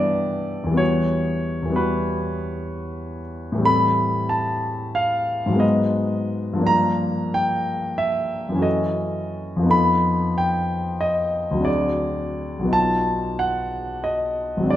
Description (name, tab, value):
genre	classical, impressionist solo piano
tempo	60 BPM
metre	3/4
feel	uneven beats, rubato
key	unclear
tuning	A4 = 440 Hz
part	warm concert grand piano	solo	0.0-14.8 s	Ab1 to B5	-20 LUFS	equal	none
room	wet recital hall reverb, RT60 1.7 s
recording	none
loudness	-19 LUFS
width	side -12 dB against mid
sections	0.0-14.8 A section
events	none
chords	0.0 G6; 0.8 Emadd9; 3.7 Am7; 5.6 Abm7; 6.7 Gm7; 8.7 Gbm7; 9.7 F7#11; 11.7 D7#11; 12.8 Cb